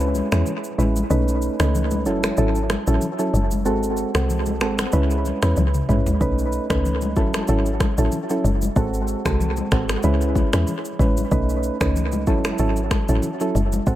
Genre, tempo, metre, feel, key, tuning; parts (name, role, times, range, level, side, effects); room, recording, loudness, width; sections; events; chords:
afrobeats; 94 BPM; 4/4; swing 55% on 16ths; A4 = 440 Hz
soft electric-piano-like synth keys; accompaniment; 0.0-14.0 s; F#3 to B4; -22 LUFS; right 2 dB; chorus, dub echo
woody log drum bass; bass; 0.0-14.0 s; F#1 to E2; -22 LUFS; equal
afro-pop drum kit; drums; 0.0-14.0 s; finger snaps, kick drum, rim click, shaker, toms; -25 LUFS; equal; overdrive, dub echo
congas; percussion; 0.1-13.9 s; -30 LUFS; left 4 dB; dub echo
light reverb; echo-heavy mix; -18 LUFS; side -14 dB against mid
0.0-14.0 A section
break 0.0-6.2; drum fill 5.6-6.2
0.0 C#m7; 1.1 B9; 2.1 F#m7; 3.7 G#7b9; 4.9 C#m7; 6.2 B9; 7.2 F#m7; 8.8 G#7b9; 10.0 C#m7; 11.3 B9; 12.3 F#m7